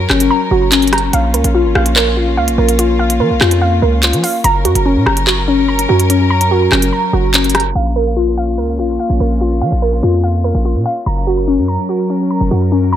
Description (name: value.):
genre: hip hop, drill.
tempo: 145 BPM.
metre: 4/4.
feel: half-time.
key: Bb minor.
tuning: A4 = 440 Hz.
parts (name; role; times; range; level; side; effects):
dark studio string section; sustained chords; 0.0-13.0 s; Gb3 to Bb4; -20 LUFS; left 2 dB; none.
warbly dusty pluck; arpeggios; 0.0-13.0 s; Db4 to Bb5; -15 LUFS; equal; chorus, digital delay.
hard-hitting 808-style bass; bass; 0.0-13.0 s; Gb1 to F3; -15 LUFS; equal; none.
drill drum kit; drums; 0.1-7.6 s; handclaps, hi-hat, rim click; -15 LUFS; equal; none.
room: light reverb, digital ambience.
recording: low-pass filter.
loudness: -11 LUFS.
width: side -10 dB against mid.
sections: 0.0-7.8 A section; 7.8-13.0 B section.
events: filter sweep 7.8-13.0.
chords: 0.0 Gb; 1.1 Bbm; 4.4 Gb; 7.8 Bbm; 11.1 Gb.